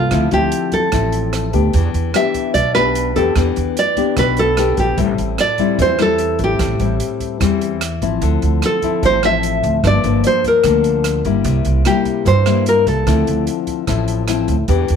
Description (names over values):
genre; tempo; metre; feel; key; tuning
bossa nova; 148 BPM; 4/4; straight; D minor; A4 = 441 Hz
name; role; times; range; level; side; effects
nylon-string guitar; melody; 0.0-13.4 s; F4 to E5; -17 LUFS; right 1 dB; none
nylon-string guitar; accompaniment; 0.0-15.0 s; G2 to G4; -19 LUFS; left 11 dB; none
upright bass; bass; 0.0-15.0 s; G1 to G2; -18 LUFS; right 2 dB; none
open jazz drum kit; drums; 0.1-15.0 s; hi-hat, kick drum, rim click; -25 LUFS; right 7 dB; none
room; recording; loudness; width
light reverb; 1960s-style stereo with parts hard left and right; -14 LUFS; side -7 dB against mid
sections
0.0-15.0 A section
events
none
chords
0.1 Dm9; 1.7 Em7; 5.0 Am7; 8.2 Dm9; 9.8 Gm7; 11.5 C7; 13.1 Dm9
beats
| 0.12 0.52 0.93 1.33 | 1.74 2.14 2.55 2.95 | 3.36 3.76 4.17 4.57 | 4.98 5.38 5.79 6.19 | 6.60 7.00 7.41 7.81 | 8.22 8.62 9.03 9.43 | 9.83 10.24 10.64 11.05 | 11.45 11.86 12.26 12.66 | 13.07 13.47 13.88 14.28 | 14.68